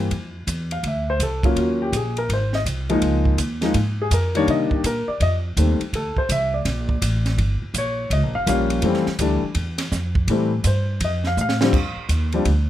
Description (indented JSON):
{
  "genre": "jazz piano trio",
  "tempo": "165 BPM",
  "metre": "4/4",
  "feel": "swing 65% on 8ths",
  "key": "F major",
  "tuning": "A4 = 442 Hz",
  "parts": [
    { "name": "warm baby grand piano", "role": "melody", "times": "0.0-12.5 s", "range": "D3 to F5", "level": "-22 LUFS", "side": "left 2 dB", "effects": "none" },
    { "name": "upright bass", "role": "bass", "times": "0.0-12.7 s", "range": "G1 to C3", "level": "-22 LUFS", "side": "equal", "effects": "none" },
    { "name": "compact cocktail drum kit", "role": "drums", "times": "0.1-12.6 s", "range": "crash cymbal, hi-hat, kick drum, ride cymbal, snare drum", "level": "-26 LUFS", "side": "right 2 dB", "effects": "none" }
  ],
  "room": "light reverb",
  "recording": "none",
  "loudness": "-19 LUFS",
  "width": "side -12 dB against mid",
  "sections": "0.1-11.7 A section",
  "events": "grand piano solo 0.1-12.7; drum fill 11.4-11.7",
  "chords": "0.1 F5; 1.6 Ebm7; 2.3 Ab; 3.0 Db69; 4.5 Cm7; 5.2 F7; 5.9 Bbmaj7; 7.4 Gm7b5; 8.8 Fmaj7; 11.0 F; 11.7 Bb (rootless)"
}